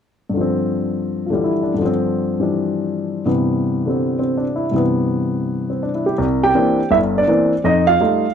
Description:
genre	solo jazz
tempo	165 BPM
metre	4/4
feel	swing 64% on 8ths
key	C major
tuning	A4 = 440 Hz
part	warm grand piano	solo	0.3-8.3 s	G1 to G5	-16 LUFS	equal	none
room	moderate small room reverb, RT60 0.5 s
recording	none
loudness	-16 LUFS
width	side -8 dB against mid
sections	0.3-6.2 A section; 6.2-8.3 B section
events	none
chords	0.3 G7sus4; 3.3 Cmaj7/G; 6.2 C9; 7.6 F9

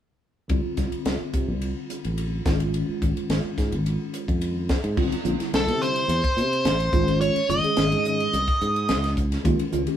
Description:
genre	electric jazz fusion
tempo	107 BPM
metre	4/4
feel	straight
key	C phrygian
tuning	A4 = 441 Hz
part	tine electric piano	accompaniment	0.5-10.0 s	D3 to Ab4	-28 LUFS	equal	medium stereo tremolo
part	fretless electric bass	bass	0.5-9.9 s	Gb1 to C3	-26 LUFS	equal	none
part	tight funk drum kit	drums	0.5-10.0 s	crash cymbal, hi-hat, kick drum, ride cymbal, snare drum	-27 LUFS	equal	none
part	biting lead guitar	melody	5.6-9.1 s	A4 to Eb5	-23 LUFS	equal	overdrive
room	moderate studio reverb, RT60 0.6 s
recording	band playing live in one room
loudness	-21 LUFS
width	side -10 dB against mid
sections	0.5-5.0 A section; 5.0-10.0 B section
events	none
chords	0.5 Csus24; 2.5 Absus4; 5.0 Csus4; 6.9 Absus4; 9.4 Eb9sus4

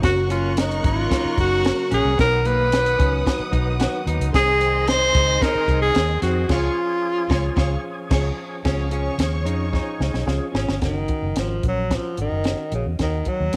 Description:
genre	uptempo 1960s-style soul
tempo	111 BPM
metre	4/4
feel	straight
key	F# major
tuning	A4 = 440 Hz
part	breathy tenor saxophone	melody	0.0-13.6 s	C#3 to B#4	-24 LUFS	equal	none
part	warm symphonic violin section	second line	0.0-10.5 s	G#4 to F#6	-35 LUFS	equal	none
part	mellow tine electric piano	accompaniment	0.0-13.6 s	B2 to F#5	-34 LUFS	equal	none
part	overdriven tonewheel organ	sustained chords	0.0-10.8 s	C#3 to G#4	-36 LUFS	equal	slow rotary speaker, chorus vibrato
part	electric guitar through a small old amp	riff	0.0-10.8 s	A#3 to G#4	-33 LUFS	equal	none
part	vintage muted fingered electric bass	bass	0.0-13.6 s	F#1 to E#2	-26 LUFS	equal	none
part	compact cocktail drum kit	drums	0.0-13.6 s	crash cymbal, hi-hat, kick drum, snare drum	-26 LUFS	equal	none
room	moderate spring reverb, RT60 2.1 s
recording	none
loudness	-21 LUFS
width	mono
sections	0.0-8.7 A section; 8.7-10.8 B section; 10.8-13.6 C section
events	band accent 6.5-8.7; drum fill 9.7-10.8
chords	0.0 F#; 2.2 B; 4.3 G#/B#; 6.5 C#; 10.8 F#; 13.0 D#m

